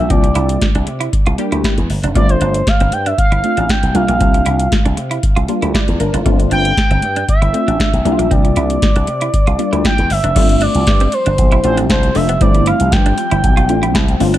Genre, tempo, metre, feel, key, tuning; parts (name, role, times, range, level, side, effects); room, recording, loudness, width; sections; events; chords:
early-eighties boogie funk; 117 BPM; 4/4; straight; A4 = 441 Hz
expressive synth lead; melody; 0.0-14.2 s; C5 to G5; -18 LUFS; equal; chorus, tape echo
funky polysynth comp; accompaniment; 0.0-14.3 s; G3 to D5; -19 LUFS; left 2 dB; chorus
clean electric guitar; riff; 0.0-14.4 s; G3 to F4; -24 LUFS; right 5 dB; wide subtle chorus
slap bass with an envelope filter; bass; 0.0-14.4 s; F1 to C3; -17 LUFS; equal
booming analog drum machine; drums; 0.1-14.4 s; crash cymbal, hi-hat, kick drum, snare drum; -15 LUFS; equal; gated reverb
soft string machine; sustained chords; 11.1-14.4 s; F3 to C4; -25 LUFS; equal; phaser, ensemble chorus
little or no reverb; -12 LUFS; side -13 dB against mid
0.0-10.4 A section; 10.4-14.4 B section
0.0 C9sus4; 2.2 G9sus4; 4.0 C9sus4; 6.3 G9sus4; 8.1 C9sus4; 10.4 G9sus4